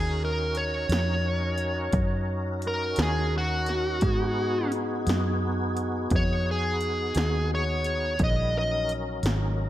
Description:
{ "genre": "slow blues", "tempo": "58 BPM (dotted quarters)", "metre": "12/8", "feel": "straight", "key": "Eb minor", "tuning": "A4 = 440 Hz", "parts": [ { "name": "smooth overdriven lead guitar", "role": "melody", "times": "0.0-8.9 s", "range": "Gb4 to Eb5", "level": "-29 LUFS", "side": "equal", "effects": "none" }, { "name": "tonewheel organ", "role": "sustained chords", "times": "0.0-9.7 s", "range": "D3 to Cb5", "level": "-32 LUFS", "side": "equal", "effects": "slow rotary speaker, overdrive, chorus vibrato" }, { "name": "vintage muted fingered electric bass", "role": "bass", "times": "0.0-9.7 s", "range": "Ab1 to Ab2", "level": "-28 LUFS", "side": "equal", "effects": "none" }, { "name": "punchy analog drum machine", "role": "drums", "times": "0.5-9.4 s", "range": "hi-hat, kick drum, snare drum", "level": "-30 LUFS", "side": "equal", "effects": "none" } ], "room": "moderate lush hall reverb, RT60 1.7 s", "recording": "big arena sound", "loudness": "-24 LUFS", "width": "side -13 dB against mid", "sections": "0.0-9.7 A section", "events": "none", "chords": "0.0 Ebm7; 4.0 Abm7; 8.2 Ebm7" }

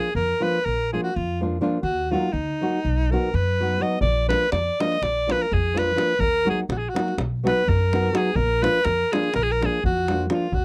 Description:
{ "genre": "balkan folk, Balkan wedding band", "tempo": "249 BPM (eighths)", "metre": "9/8", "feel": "straight", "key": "Bb phrygian dominant", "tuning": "A4 = 439 Hz", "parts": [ { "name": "bright alto saxophone", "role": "melody", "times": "0.0-10.6 s", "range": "Eb4 to Eb5", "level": "-26 LUFS", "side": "equal", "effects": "none" }, { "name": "nylon-string guitar", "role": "accompaniment", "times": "0.0-10.5 s", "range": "F3 to Gb4", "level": "-27 LUFS", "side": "equal", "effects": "none" }, { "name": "upright bass", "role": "bass", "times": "0.1-10.6 s", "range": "Bb1 to F#2", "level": "-28 LUFS", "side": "equal", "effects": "none" }, { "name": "davul", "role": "percussion", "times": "4.0-10.6 s", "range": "none", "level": "-30 LUFS", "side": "equal", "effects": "none" } ], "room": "light reverb", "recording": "dry, close 1970s-style studio recording", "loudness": "-23 LUFS", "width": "mono", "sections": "0.0-10.6 A section", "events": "none", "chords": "0.0 Bb; 1.8 Ebm; 2.8 B; 4.0 Bb; 6.2 Ebm; 7.2 B; 8.4 Bb" }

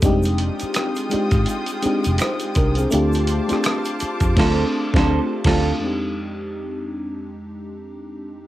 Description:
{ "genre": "R&B, neo-soul", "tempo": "83 BPM", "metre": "4/4", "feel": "swing 59% on 16ths", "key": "unclear", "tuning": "A4 = 440 Hz", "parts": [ { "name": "FM electric piano with soft pad layer", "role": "accompaniment", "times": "0.0-8.5 s", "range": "F2 to C5", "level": "-22 LUFS", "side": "left 1 dB", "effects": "chorus, cassette tape" }, { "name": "rich studio string section", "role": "sustained chords", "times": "0.0-5.8 s", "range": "Ab3 to Eb6", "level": "-30 LUFS", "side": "left 1 dB", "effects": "cassette tape" }, { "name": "vintage muted picked electric bass", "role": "bass", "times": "0.0-5.7 s", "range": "F1 to F2", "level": "-21 LUFS", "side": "equal", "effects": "none" }, { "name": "dusty soul sampler-style drum kit", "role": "drums", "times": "0.0-5.7 s", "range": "crash cymbal, hi-hat, kick drum, rim click, snare drum", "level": "-22 LUFS", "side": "equal", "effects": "cassette tape" }, { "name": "egg shaker and finger snaps", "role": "percussion", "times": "0.0-4.3 s", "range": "none", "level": "-34 LUFS", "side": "right 4 dB", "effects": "none" }, { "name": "electric guitar through a small old amp", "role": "second line", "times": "4.4-5.7 s", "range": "F4 to C5", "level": "-25 LUFS", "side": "right 6 dB", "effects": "spring reverb, cassette tape" } ], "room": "light reverb", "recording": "home recording on cassette", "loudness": "-18 LUFS", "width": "side -14 dB against mid", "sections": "0.0-5.8 A section; 5.8-8.5 B section", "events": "band accent 4.4-5.8", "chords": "0.0 Fm9; 2.9 Dm7; 5.8 Fm9" }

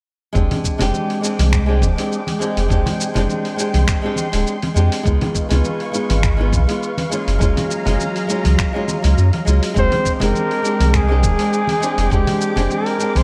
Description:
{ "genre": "sunset chillout", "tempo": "102 BPM", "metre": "4/4", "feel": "swing 55% on 16ths", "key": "F dorian", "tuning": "A4 = 437 Hz", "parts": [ { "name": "flamenco guitar", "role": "accompaniment", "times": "0.3-13.2 s", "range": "Ab3 to G4", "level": "-24 LUFS", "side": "equal", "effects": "delay, shimmer reverb" }, { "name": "soft string machine", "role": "sustained chords", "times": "0.3-13.2 s", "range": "Gb3 to D6", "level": "-28 LUFS", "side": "equal", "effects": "ensemble chorus, shimmer reverb" }, { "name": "electronic kick drum", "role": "drums", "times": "0.3-12.2 s", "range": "none", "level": "-22 LUFS", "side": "equal", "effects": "none" }, { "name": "warm sub bass", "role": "bass", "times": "0.4-13.2 s", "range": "D1 to Gb2", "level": "-18 LUFS", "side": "equal", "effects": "tube saturation" }, { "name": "dusty soul sampler-style drum kit", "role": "drums", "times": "0.4-13.2 s", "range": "finger snaps, hi-hat, shaker", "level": "-29 LUFS", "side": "equal", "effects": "none" }, { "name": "congas", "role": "percussion", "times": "0.5-13.2 s", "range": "none", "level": "-28 LUFS", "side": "equal", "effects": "none" }, { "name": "mellow flugelhorn", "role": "melody", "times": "9.8-13.2 s", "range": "G4 to C5", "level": "-22 LUFS", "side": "equal", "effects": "delay, shimmer reverb" } ], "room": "light reverb, studio ambience", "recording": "none", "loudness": "-18 LUFS", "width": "mono", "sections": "0.3-13.2 A section", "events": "none", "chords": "0.3 Fm69; 5.1 Db7; 7.1 Gbmaj7; 9.8 Fm69" }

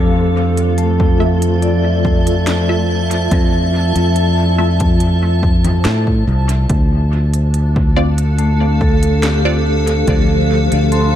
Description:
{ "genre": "ambient dub", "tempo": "71 BPM", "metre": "4/4", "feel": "straight", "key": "unclear", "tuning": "A4 = 439 Hz", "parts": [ { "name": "granular cloud pad", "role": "sustained chords", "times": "0.0-11.2 s", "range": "D4 to A5", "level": "-20 LUFS", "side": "right 1 dB", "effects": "built-in reverb" }, { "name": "vibraphone with medium mallets", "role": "arpeggios", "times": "0.0-11.2 s", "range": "F3 to E6", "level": "-21 LUFS", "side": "left 4 dB", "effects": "dub echo" }, { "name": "fingered electric bass", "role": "bass", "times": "0.0-11.2 s", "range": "C2 to A2", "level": "-14 LUFS", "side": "equal", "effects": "tube saturation" }, { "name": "organic electronic drum kit", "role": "drums", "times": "0.6-11.1 s", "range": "congas, hi-hat, snare drum", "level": "-26 LUFS", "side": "equal", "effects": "dub echo" }, { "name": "electronic kick drum", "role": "drums", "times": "1.0-10.3 s", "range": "none", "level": "-17 LUFS", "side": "equal", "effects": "overdrive" }, { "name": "filtered dub chord stab", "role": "stabs", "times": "1.2-9.7 s", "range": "A3 to E5", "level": "-24 LUFS", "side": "right 1 dB", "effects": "phaser, dub echo" } ], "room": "little or no reverb", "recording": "echo-heavy mix", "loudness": "-12 LUFS", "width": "side -11 dB against mid", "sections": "0.0-11.2 A section", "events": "none", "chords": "0.0 Fmaj7; 6.7 Dm7" }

